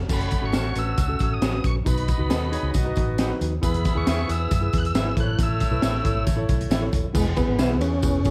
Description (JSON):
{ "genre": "uptempo 1960s-style soul", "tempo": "136 BPM", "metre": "4/4", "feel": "straight", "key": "E major", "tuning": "A4 = 442 Hz", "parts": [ { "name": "vintage muted fingered electric bass", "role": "bass", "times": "0.0-8.3 s", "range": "D#1 to F#2", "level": "-28 LUFS", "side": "equal", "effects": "none" }, { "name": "tonewheel organ", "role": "melody", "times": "0.1-8.3 s", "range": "G#3 to F#6", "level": "-31 LUFS", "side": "equal", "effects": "chorus vibrato, stopped rotary speaker" }, { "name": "clear horn section", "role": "second line", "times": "0.1-6.9 s", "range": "A3 to E5", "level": "-36 LUFS", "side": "equal", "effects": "plate reverb" }, { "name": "tine electric piano", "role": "accompaniment", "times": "0.1-8.3 s", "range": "A2 to C#5", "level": "-33 LUFS", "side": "equal", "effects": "overdrive, plate reverb" }, { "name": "crunchy breakbeat drum kit", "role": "drums", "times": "0.1-8.3 s", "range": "crash cymbal, hi-hat, kick drum, ride cymbal, snare drum", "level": "-27 LUFS", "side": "equal", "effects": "none" }, { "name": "congas", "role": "percussion", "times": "0.1-8.3 s", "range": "none", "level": "-40 LUFS", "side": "equal", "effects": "none" }, { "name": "tambourine", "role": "percussion", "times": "0.1-8.3 s", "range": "none", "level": "-44 LUFS", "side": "equal", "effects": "none" }, { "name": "electric guitar through a small old amp", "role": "stabs", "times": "0.5-7.7 s", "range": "C#4 to E5", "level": "-38 LUFS", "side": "equal", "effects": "spring reverb, plate reverb" }, { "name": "vintage hollow-body jazz guitar", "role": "riff", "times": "2.3-3.4 s", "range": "D#4 to A4", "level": "-36 LUFS", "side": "equal", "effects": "none" } ], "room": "light reverb", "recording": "vinyl crackle", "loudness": "-23 LUFS", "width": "mono", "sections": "0.1-7.1 A section; 7.1-8.3 B section", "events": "none", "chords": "0.1 F#m; 1.9 B; 3.6 E; 5.2 A; 7.1 E", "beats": "| 0.10 0.54 0.98 1.42 | 1.86 2.30 2.74 3.18 | 3.62 4.07 4.50 4.95 | 5.39 5.83 6.27 6.71 | 7.15 7.59 8.03" }